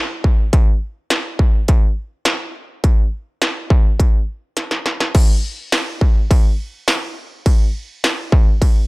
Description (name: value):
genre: dream pop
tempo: 104 BPM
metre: 4/4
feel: straight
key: none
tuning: none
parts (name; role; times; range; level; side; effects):
- industrial drum kit; drums; 0.2-8.8 s; crash cymbal, hi-hat, kick drum, ride cymbal, snare drum, tambourine; -14 LUFS; equal; distortion, overdrive
room: little or no reverb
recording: dry, gritty hardware recording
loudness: -15 LUFS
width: side -24 dB against mid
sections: 0.0-5.2 A section; 5.2-8.9 B section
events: drum fill 4.6-5.2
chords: none